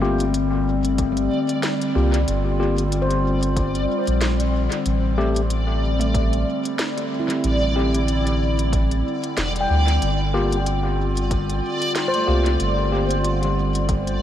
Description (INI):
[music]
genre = ambient dub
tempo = 93 BPM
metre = 4/4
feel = swing 57% on 16ths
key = unclear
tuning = A4 = 443 Hz
[part]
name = warbly tape-like pad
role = sustained chords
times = 0.0-14.2 s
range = D3 to F4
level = -24 LUFS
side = left 1 dB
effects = chorus, built-in reverb
[part]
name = handpan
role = arpeggios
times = 0.0-14.2 s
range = G3 to G5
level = -28 LUFS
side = equal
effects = diffuse ambient delay
[part]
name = tine electric piano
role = stabs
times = 0.0-13.1 s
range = A3 to G4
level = -29 LUFS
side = left 2 dB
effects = dub echo
[part]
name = soft dub sub bass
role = bass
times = 0.0-14.2 s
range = E1 to D2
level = -22 LUFS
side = equal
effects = tube saturation
[part]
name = backwards swelling texture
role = texture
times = 0.7-14.2 s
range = D5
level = -29 LUFS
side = equal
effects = built-in reverb, ensemble chorus
[part]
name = organic electronic drum kit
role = drums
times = 0.2-14.2 s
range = hi-hat, snare drum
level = -31 LUFS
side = equal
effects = dub echo
[part]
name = electronic kick drum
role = drums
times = 1.0-14.0 s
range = none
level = -26 LUFS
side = equal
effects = none
[sound]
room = moderate huge ambient reverb, RT60 8.6 s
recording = dreamy mix soaked in reverb, vinyl crackle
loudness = -18 LUFS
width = side -11 dB against mid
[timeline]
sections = 0.0-14.2 A section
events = none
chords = 0.0 Gm7; 4.9 Am7; 10.0 Gm7